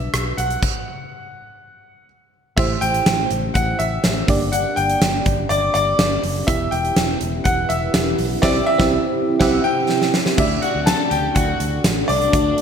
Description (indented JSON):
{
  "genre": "1980s-style pop",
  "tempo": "123 BPM",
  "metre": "4/4",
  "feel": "straight",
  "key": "D mixolydian",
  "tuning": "A4 = 439 Hz",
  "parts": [
    { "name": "bright grand piano", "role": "melody", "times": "0.0-12.6 s", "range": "D5 to A5", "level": "-22 LUFS", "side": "left 1 dB", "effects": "lush chorus" },
    { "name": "FM electric piano", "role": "accompaniment", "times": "0.0-12.6 s", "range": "G3 to E5", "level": "-23 LUFS", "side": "right 3 dB", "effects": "chorus" },
    { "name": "vintage muted fingered electric bass", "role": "bass", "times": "0.0-12.5 s", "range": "E1 to D2", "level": "-25 LUFS", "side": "left 1 dB", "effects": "none" },
    { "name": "huge arena drum kit", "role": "drums", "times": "0.1-12.6 s", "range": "crash cymbal, hi-hat, kick drum, rim click, snare drum, tambourine", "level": "-21 LUFS", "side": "equal", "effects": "gated reverb" },
    { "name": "ethereal airy pad", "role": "sustained chords", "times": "7.1-12.6 s", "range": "C3 to B4", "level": "-28 LUFS", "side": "equal", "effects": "ensemble chorus, built-in reverb" },
    { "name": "warm studio violin section", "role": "second line", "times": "10.4-12.6 s", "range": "D4 to A4", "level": "-27 LUFS", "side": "left 5 dB", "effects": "none" }
  ],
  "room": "wet plate reverb, RT60 2.3 s",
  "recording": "bright 1980s-style digital production",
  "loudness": "-16 LUFS",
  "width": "side -7 dB against mid",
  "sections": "0.0-2.6 A section; 2.6-10.4 B section; 10.4-12.6 C section",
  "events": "stop 0.6-2.6; band accent 8.4-10.4; drum fill 9.9-10.4",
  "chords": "0.0 Gmaj7/B; 2.6 Am7; 4.3 Gm; 6.5 Em; 8.4 C; 10.4 D"
}